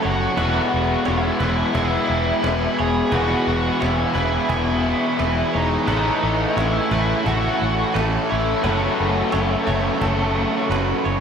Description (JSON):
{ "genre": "rock, shoegaze and dream pop", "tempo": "87 BPM", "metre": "4/4", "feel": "straight", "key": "unclear", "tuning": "A4 = 440 Hz", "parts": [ { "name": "octave-fuzz lead guitar", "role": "melody", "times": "0.0-10.7 s", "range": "A3 to G#4", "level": "-24 LUFS", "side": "left 1 dB", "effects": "distortion, tape echo" }, { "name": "ethereal airy pad", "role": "sustained chords", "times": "0.0-11.2 s", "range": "G#4 to C#6", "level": "-30 LUFS", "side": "equal", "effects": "ensemble chorus, built-in reverb" }, { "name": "direct-recorded clean electric guitar", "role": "arpeggios", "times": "0.0-11.2 s", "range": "G#4 to C#5", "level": "-31 LUFS", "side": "right 6 dB", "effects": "analog chorus, tape echo" }, { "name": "biting overdriven guitar", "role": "riff", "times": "0.0-11.2 s", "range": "A2 to F#4", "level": "-25 LUFS", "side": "right 5 dB", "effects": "reverse reverb" }, { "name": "cranked stack guitar", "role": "riff", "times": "0.0-11.2 s", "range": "E2 to A3", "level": "-28 LUFS", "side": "equal", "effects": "overdrive, analog chorus" }, { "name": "raw garage guitar", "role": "riff", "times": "0.0-11.2 s", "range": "E2 to F#4", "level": "-25 LUFS", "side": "left 7 dB", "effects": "overdrive, wide subtle chorus" }, { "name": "vintage muted fingered electric bass", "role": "bass", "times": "0.1-11.2 s", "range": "E1 to A1", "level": "-24 LUFS", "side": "equal", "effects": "none" }, { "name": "cajon", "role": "drums", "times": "0.4-10.9 s", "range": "none", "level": "-32 LUFS", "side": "equal", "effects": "none" } ], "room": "wet lush hall reverb, RT60 1.8 s", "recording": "dreamy mix soaked in reverb", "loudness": "-18 LUFS", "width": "side -7 dB against mid", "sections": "0.0-11.2 A section", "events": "none", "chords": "0.4 E; 5.9 Aadd9; 8.6 F#m" }